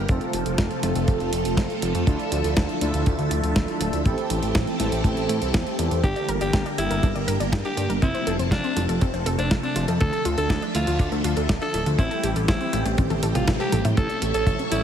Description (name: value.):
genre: italo disco.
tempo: 121 BPM.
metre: 4/4.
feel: straight.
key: D minor.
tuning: A4 = 440 Hz.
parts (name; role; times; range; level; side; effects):
phased string machine; sustained chords; 0.0-14.8 s; C3 to C#6; -27 LUFS; equal; ensemble chorus, phaser.
analog synth brass; stabs; 0.0-6.0, 14.0-14.8 s; A3 to A4; -29 LUFS; right 3 dB; chorus, ping-pong delay.
fat analog bass; bass; 0.0-14.8 s; D1 to A2; -26 LUFS; equal; tube saturation.
clean 12-bit digital drum machine; drums; 0.1-14.8 s; hi-hat, snare drum, toms; -29 LUFS; equal; none.
kick drum; drums; 0.1-14.6 s; none; -23 LUFS; equal; none.
raspy alto saxophone; melody; 6.0-14.8 s; D4 to A4; -28 LUFS; equal; tape echo.
analog pluck; arpeggios; 6.0-14.8 s; C4 to G5; -31 LUFS; left 2 dB; chorus, ping-pong delay.
riser; sound effects; 14.4-14.8 s; none; -35 LUFS; equal; none.
room: light reverb.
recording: heavily compressed radio sound.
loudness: -20 LUFS.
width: side -9 dB against mid.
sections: 0.0-14.0 A section.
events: drum fill 13.0-14.0, 14.0-14.8; band accent 13.5; riser 14.4-14.8.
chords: 0.1 F; 2.1 Dmadd9; 4.1 Am7; 6.0 Gm; 8.0 F; 10.0 Dmadd9; 12.0 Am7; 14.0 A.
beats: | 0.09 0.58 1.08 1.57 | 2.07 2.57 3.06 3.56 | 4.05 4.55 5.05 5.54 | 6.04 6.53 7.03 7.53 | 8.02 8.52 9.01 9.51 | 10.01 10.50 11.00 11.49 | 11.99 12.48 12.98 13.48 | 13.97 14.47.